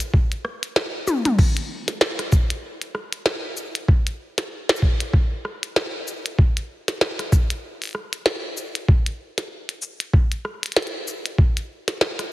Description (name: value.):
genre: glitch hop.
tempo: 96 BPM.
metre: 4/4.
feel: swing 58% on 16ths.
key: none.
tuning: none.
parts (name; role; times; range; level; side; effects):
glitchy drum kit; drums; 0.0-12.3 s; crash cymbal, hi-hat, rim click, shaker, snare drum, toms; -23 LUFS; equal; studio reverb.
electronic kick drum; drums; 0.1-11.5 s; none; -17 LUFS; equal; studio reverb.
room: light reverb, digital ambience.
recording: heavily compressed radio sound.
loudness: -20 LUFS.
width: side -17 dB against mid.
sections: 0.0-12.3 A section.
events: drum fill 1.1-1.4.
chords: none.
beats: 0.14 0.76 | 1.39 2.01 2.64 3.26 | 3.89 4.51 5.14 5.76 | 6.39 7.01 7.64 8.26 | 8.89 9.51 10.14 10.76 | 11.39 12.01.